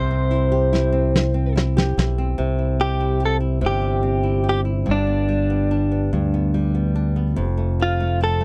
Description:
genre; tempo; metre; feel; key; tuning
six-eight pop ballad; 48 BPM (dotted quarters); 6/8; straight; C major; A4 = 440 Hz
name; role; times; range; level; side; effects
direct-recorded clean electric guitar; melody; 0.0-8.4 s; D4 to C5; -25 LUFS; equal; none
flamenco guitar; accompaniment; 0.0-8.4 s; F2 to G4; -27 LUFS; equal; none
fingered electric bass; bass; 0.0-8.4 s; F1 to D2; -23 LUFS; equal; none
vintage brush drum kit; drums; 0.3-2.2 s; hi-hat, snare drum; -24 LUFS; equal; none
room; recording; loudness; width
little or no reverb; dry, close 1970s-style studio recording; -20 LUFS; mono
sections
0.0-2.4 A section; 2.4-8.4 B section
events
drum fill 1.1-2.4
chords
0.0 C; 4.9 G; 7.4 F

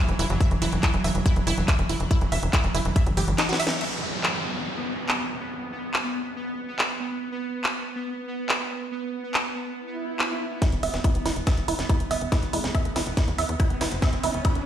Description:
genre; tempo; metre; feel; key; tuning
psychedelic trance; 141 BPM; 4/4; straight; unclear; A4 = 440 Hz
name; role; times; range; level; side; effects
pulsing gated texture; sustained chords; 0.0-14.7 s; E3 to B3; -31 LUFS; right 2 dB; chorus, built-in reverb, sidechain pumping
wide unison pluck; riff; 0.0-3.6, 10.6-14.5 s; D#4 to E5; -30 LUFS; right 2 dB; auto-pan, vintage 12-bit sampler grit, sidechain pumping, ping-pong delay
tight sequencer bass; bass; 0.1-3.3, 10.7-14.6 s; E1 to E2; -27 LUFS; equal; none
garage drum kit; drums; 0.1-14.6 s; crash cymbal, handclaps, hi-hat, snare drum; -28 LUFS; equal; none
electronic kick drum; drums; 0.4-3.0, 10.6-14.5 s; none; -22 LUFS; equal; none
downlifter, swell and riser; sound effects; 3.8-14.7 s; none; -34 LUFS; equal; none
vowel-sweep wobble bass; second line; 10.8-12.7 s; G3 to B3; -43 LUFS; left 1 dB; none
room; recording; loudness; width
light reverb; played on a big sound system in a bare room, stone room reverb; -23 LUFS; side -10 dB against mid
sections
0.0-3.8 A section; 3.8-10.6 B section; 10.6-14.7 C section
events
drum fill 3.4-3.8, 10.6-14.7; band accent 3.7; swell 9.9-10.6; build-up 10.6-14.7; riser 10.6-14.7; filter sweep on synth arpeggio sound 10.6-14.7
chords
0.0 N.C.; 10.6 E5

